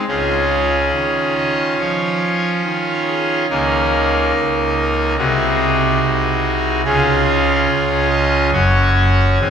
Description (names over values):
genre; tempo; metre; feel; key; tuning
classical, chorale-style piece for pipe organ; 71 BPM; 4/4; rubato; Db major; A4 = 441 Hz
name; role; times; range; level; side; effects
pipe organ, trumpet; solo; 0.0-9.5 s; Gb1 to Eb5; -14 LUFS; equal; none
room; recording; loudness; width
wet church reverb, RT60 3.5 s; heard from further back in the room; -14 LUFS; side -7 dB against mid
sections
0.0-9.5 A section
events
none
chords
0.1 Db; 3.5 Eb5/Db; 5.2 Ab7/C; 6.9 Db; 8.6 Gb5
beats
| 0.07 0.94 1.80 2.65 | 3.50 4.35 5.20 6.03 | 6.87 7.71 8.55 9.42